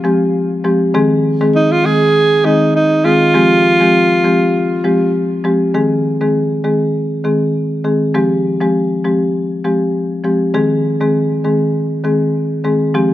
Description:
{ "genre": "afrobeats", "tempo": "100 BPM", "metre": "4/4", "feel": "swing 55% on 16ths", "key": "unclear", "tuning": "A4 = 442 Hz", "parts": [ { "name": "marimba with medium mallets", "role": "accompaniment", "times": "0.0-13.1 s", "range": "Eb3 to Ab4", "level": "-13 LUFS", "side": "left 1 dB", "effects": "none" }, { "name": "breathy alto saxophone", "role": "melody", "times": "1.6-5.1 s", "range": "Eb4 to Ab4", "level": "-13 LUFS", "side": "right 1 dB", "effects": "tape echo" } ], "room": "light reverb, studio ambience", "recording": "dark, warm production", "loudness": "-12 LUFS", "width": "side -14 dB against mid", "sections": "0.0-5.7 A section; 5.7-13.1 B section", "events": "none", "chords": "0.0 Fmadd9; 0.9 Ab; 3.3 Fmadd9; 5.7 Ab; 8.1 Fmadd9; 10.5 Ab" }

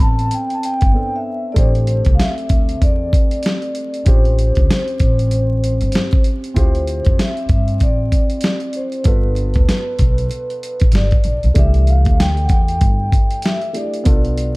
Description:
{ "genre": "hip hop, jazz-hop", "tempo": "96 BPM", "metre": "4/4", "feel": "swing 61% on 16ths", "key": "A minor", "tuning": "A4 = 443 Hz", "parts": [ { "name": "vibraphone with soft mallets", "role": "melody", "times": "0.0-14.6 s", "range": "B4 to A5", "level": "-23 LUFS", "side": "left 1 dB", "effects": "none" }, { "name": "dark concert grand piano", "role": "accompaniment", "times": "0.0-14.6 s", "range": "E3 to A4", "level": "-26 LUFS", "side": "right 2 dB", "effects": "none" }, { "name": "upright bass", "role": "bass", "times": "0.0-14.5 s", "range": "G1 to G2", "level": "-17 LUFS", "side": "equal", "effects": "none" }, { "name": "dusty soul sampler-style drum kit", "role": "drums", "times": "0.0-14.6 s", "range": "hi-hat, kick drum, snare drum", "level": "-15 LUFS", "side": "equal", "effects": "none" } ], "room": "studio ambience", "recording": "dark, warm production, vinyl crackle", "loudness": "-14 LUFS", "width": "side -24 dB against mid", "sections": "0.0-1.6 A section; 1.6-14.6 B section", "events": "vibraphone solo 0.0-1.6; break 0.9-1.6", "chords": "0.0 Am11; 1.6 Am7; 4.1 A7alt; 6.6 Dm11; 9.1 G7; 11.6 C69; 14.1 Bm7b5" }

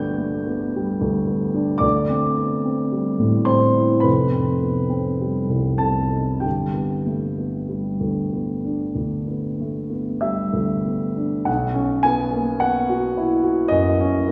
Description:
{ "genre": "classical, impressionist solo piano", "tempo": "47-55 BPM", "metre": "4/4", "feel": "rubato", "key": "G major", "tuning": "A4 = 440 Hz", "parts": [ { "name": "warm concert grand piano", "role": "solo", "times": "0.0-14.3 s", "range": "F1 to G6", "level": "-21 LUFS", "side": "equal", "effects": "none" } ], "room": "wet scoring stage reverb, RT60 2.0 s", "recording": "recorded in a church or concert hall, small room ambience", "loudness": "-21 LUFS", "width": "mono", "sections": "0.0-11.5 A section; 11.5-14.3 B section", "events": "none", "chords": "0.0 Gmaj9; 1.8 D11; 4.1 F9; 6.5 G; 11.5 Badd9" }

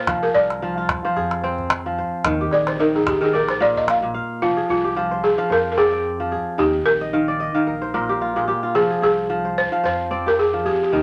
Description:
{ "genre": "west african traditional, West African string and xylophone music", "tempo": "111 BPM", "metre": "4/4", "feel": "swing 56% on 16ths", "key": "F dorian", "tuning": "A4 = 440 Hz", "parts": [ { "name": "balafon", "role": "melody", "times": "0.0-11.0 s", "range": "F4 to F5", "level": "-21 LUFS", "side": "equal", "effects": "none" }, { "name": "kora", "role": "arpeggios", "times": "0.0-11.0 s", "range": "Bb2 to G5", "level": "-24 LUFS", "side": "equal", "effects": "none" }, { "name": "warm sub bass", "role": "bass", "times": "0.1-11.0 s", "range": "F1 to F2", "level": "-37 LUFS", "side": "equal", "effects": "none" }, { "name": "calabash", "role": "percussion", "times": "0.1-4.0 s", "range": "none", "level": "-26 LUFS", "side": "equal", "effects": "none" } ], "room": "moderate club reverb, RT60 0.6 s", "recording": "none", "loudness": "-20 LUFS", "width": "mono", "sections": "0.0-4.4 A section; 4.4-11.0 B section", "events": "balafon solo 0.0-4.4; kora fill 7.0-8.8", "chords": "0.1 Fm; 2.2 Eb; 3.3 Bb; 4.4 Fm; 6.6 Eb5; 7.7 Abmaj13/Bb; 8.8 Fm" }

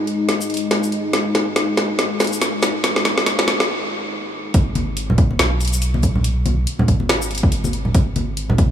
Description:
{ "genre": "deep dubstep", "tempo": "141 BPM", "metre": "4/4", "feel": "swing 58% on 16ths, half-time", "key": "G# minor", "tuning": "A4 = 440 Hz", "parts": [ { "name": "dark analog pad", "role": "sustained chords", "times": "0.0-4.6 s", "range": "G#3 to D#4", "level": "-23 LUFS", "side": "left 2 dB", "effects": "chorus" }, { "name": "deep house drum kit", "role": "drums", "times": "0.1-8.7 s", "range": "hi-hat, shaker, snare drum", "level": "-20 LUFS", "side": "equal", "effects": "none" }, { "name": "soft dub sub bass", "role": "bass", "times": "4.5-8.7 s", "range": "G#1 to B1", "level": "-21 LUFS", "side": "equal", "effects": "none" }, { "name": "electronic kick drum", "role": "drums", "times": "4.5-8.7 s", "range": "none", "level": "-15 LUFS", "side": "equal", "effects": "none" }, { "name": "congas", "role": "percussion", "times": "4.8-8.6 s", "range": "none", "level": "-22 LUFS", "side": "equal", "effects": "dub echo" } ], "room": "moderate huge ambient reverb, RT60 5.0 s", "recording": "small room ambience", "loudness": "-16 LUFS", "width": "side -10 dB against mid", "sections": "0.0-4.5 A section; 4.5-8.7 B section", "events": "build-up 0.0-4.5; drum fill 0.0-3.7; break 3.7-4.5; drop 4.5-8.7", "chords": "0.0 G#5" }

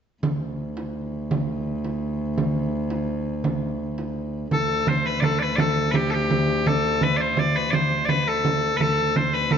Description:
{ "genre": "medieval dance", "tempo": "112 BPM (dotted quarters)", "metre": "6/8", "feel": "straight", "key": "unclear", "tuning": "A4 = 443 Hz", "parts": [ { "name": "rich viola da gamba", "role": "drone", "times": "0.2-9.6 s", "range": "D2", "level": "-28 LUFS", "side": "equal", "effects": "none" }, { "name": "frame drum", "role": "percussion", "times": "0.2-9.6 s", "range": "none", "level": "-25 LUFS", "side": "right 2 dB", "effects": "none" }, { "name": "loud bright bagpipes", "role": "melody", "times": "4.5-9.6 s", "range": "G4 to D5", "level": "-22 LUFS", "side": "left 2 dB", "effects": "none" } ], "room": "wet scoring stage reverb, RT60 1.6 s", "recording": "nothing above 7.7 kHz", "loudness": "-21 LUFS", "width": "side -7 dB against mid", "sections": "0.2-4.5 A section; 4.5-9.6 B section", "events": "none", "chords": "none" }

